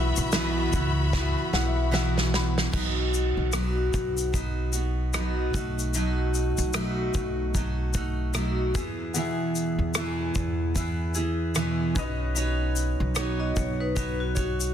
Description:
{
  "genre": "acoustic pop",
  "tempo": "75 BPM",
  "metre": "4/4",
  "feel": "swing 60% on 16ths",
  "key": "unclear",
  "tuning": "A4 = 441 Hz",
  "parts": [
    { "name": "picked steel-string acoustic guitar", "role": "accompaniment", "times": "0.0-14.7 s", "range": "E2 to C#5", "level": "-28 LUFS", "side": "right 1 dB", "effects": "none" },
    { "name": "warm upright piano", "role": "accompaniment", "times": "0.0-2.8, 9.1-14.7 s", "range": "B3 to B5", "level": "-37 LUFS", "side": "left 8 dB", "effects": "none" },
    { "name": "rich studio string section", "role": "sustained chords", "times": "0.0-2.7 s", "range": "F#4 to B5", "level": "-33 LUFS", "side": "left 3 dB", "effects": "none" },
    { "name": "upright bass", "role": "bass", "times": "0.0-14.7 s", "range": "B1 to E2", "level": "-28 LUFS", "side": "equal", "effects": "none" },
    { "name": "loose indie drum kit", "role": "drums", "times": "0.2-14.7 s", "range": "crash cymbal, kick drum, rim click, shaker, snare drum", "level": "-30 LUFS", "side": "equal", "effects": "soft clipping on kick, soft clipping on snare" },
    { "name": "vibraphone with medium mallets", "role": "second line", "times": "13.4-14.7 s", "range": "D#4 to D#5", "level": "-31 LUFS", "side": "left 4 dB", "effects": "none" }
  ],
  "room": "studio reverb",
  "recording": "dense, heavily limited modern master",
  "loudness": "-24 LUFS",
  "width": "side -9 dB against mid",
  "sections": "0.0-2.7 A section; 2.7-14.7 B section",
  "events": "drum fill 1.1-2.7; upright piano fill 1.1-2.7",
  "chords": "0.0 Bsus4; 2.7 B; 5.5 B7; 8.7 E; 12.0 Badd9",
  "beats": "0.34 1.14 1.94 | 2.74 3.54 4.34 5.14 | 5.94 6.74 7.55 8.35 | 9.15 9.95 10.76 11.56 | 12.36 13.16 13.97"
}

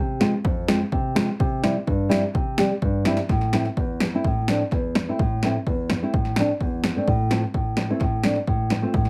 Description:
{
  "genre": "klezmer",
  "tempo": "127 BPM",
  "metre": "4/4",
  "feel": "straight",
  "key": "C major, A minor from 3.3 s",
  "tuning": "A4 = 440 Hz",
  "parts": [
    { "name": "nylon-string guitar", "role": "accompaniment", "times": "0.0-9.1 s", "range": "E2 to G4", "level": "-25 LUFS", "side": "equal", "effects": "none" },
    { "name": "punchy analog drum machine", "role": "drums", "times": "0.2-9.1 s", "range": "kick drum, snare drum", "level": "-27 LUFS", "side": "equal", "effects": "none" }
  ],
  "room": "moderate studio reverb, RT60 0.5 s",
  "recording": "heavily compressed radio sound, multiband compression",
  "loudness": "-23 LUFS",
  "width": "mono",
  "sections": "0.0-3.3 A section; 3.3-9.1 B section",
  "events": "none",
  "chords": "0.0 Fm; 1.4 C; 3.3 Am; 7.1 F/A",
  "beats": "0.45 0.93 | 1.40 1.88 2.35 2.83 | 3.30 3.78 4.25 4.72 | 5.20 5.67 6.14 6.61 | 7.08 7.55 8.02 8.48 | 8.95"
}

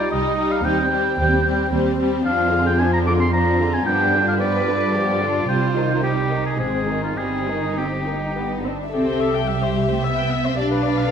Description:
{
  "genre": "quick classical-period movement for symphony orchestra",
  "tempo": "111 BPM",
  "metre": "3/4",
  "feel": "rubato",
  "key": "C minor",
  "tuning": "A4 = 440 Hz",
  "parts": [
    { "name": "warm chamber violin section", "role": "melody", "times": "0.0-11.1 s", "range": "D4 to F5", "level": "-29 LUFS", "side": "left 6 dB", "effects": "none" },
    { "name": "clear oboe", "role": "second line", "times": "0.0-8.6 s", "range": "F4 to D6", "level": "-22 LUFS", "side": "equal", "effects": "none" },
    { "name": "warm studio violin section", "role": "second line", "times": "0.0-11.1 s", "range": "B3 to E5", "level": "-26 LUFS", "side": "left 2 dB", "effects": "none" },
    { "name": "warm studio viola section", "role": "accompaniment", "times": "0.0-11.1 s", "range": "D3 to G5", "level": "-26 LUFS", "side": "left 1 dB", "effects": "none" },
    { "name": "warm studio double bass section", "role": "bass", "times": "0.0-11.1 s", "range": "G1 to G2", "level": "-24 LUFS", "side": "right 2 dB", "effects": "none" },
    { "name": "warm symphonic cello section", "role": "bass", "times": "0.0-11.1 s", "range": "G3 to B4", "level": "-26 LUFS", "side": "right 2 dB", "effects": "none" }
  ],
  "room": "moderate scoring stage reverb, RT60 1.6 s",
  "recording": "none",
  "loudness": "-18 LUFS",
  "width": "side -7 dB against mid",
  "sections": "0.0-8.9 A section; 8.9-11.1 A section",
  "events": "none",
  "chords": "0.0 Cm; 0.7 Cm/Eb; 2.2 Ddim/F; 3.9 G7; 5.5 Cm; 6.6 Ab; 7.2 Cm/G; 8.4 G; 8.9 C; 10.6 G7/B",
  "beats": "0.12 | 0.66 1.19 1.72 | 2.25 2.79 3.33 | 3.87 4.42 4.95 | 5.49 6.04 6.60 | 7.18 7.78 8.36 | 8.93 9.48 10.04 | 10.58"
}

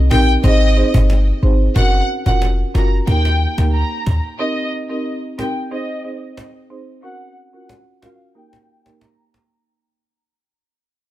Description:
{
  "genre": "dancehall",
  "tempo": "91 BPM",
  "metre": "4/4",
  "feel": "straight",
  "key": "Eb major",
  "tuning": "A4 = 440 Hz",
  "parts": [
    { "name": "marimba with medium mallets", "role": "accompaniment", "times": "0.0-9.0 s", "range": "Bb3 to C5", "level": "-22 LUFS", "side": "right 2 dB", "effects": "low-pass filter" },
    { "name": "clean 808-style bass", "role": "bass", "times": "0.0-4.2 s", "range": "F1 to Eb2", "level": "-15 LUFS", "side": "equal", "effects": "none" },
    { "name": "rich studio violin section", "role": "melody", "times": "0.1-9.5 s", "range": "Eb5 to Bb5", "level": "-22 LUFS", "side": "left 1 dB", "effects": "low-pass filter, digital delay" },
    { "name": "cajon", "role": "drums", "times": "0.1-9.5 s", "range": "none", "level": "-22 LUFS", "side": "equal", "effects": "none" }
  ],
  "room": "studio ambience",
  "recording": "none",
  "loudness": "-14 LUFS",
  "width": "side -15 dB against mid",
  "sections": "0.0-9.7 A section",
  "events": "fade-out 0.0-9.7; filter sweep 0.0-9.7",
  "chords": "0.4 Ab; 1.8 Gbmaj7; 3.1 Eb; 4.4 Cm7; 5.7 Ab; 7.0 Gbmaj7; 8.4 Eb",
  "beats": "0.44 1.10 | 1.76 2.42 3.08 3.74 | 4.39 5.05 5.71 6.37 | 7.03 7.69 8.35 9.01"
}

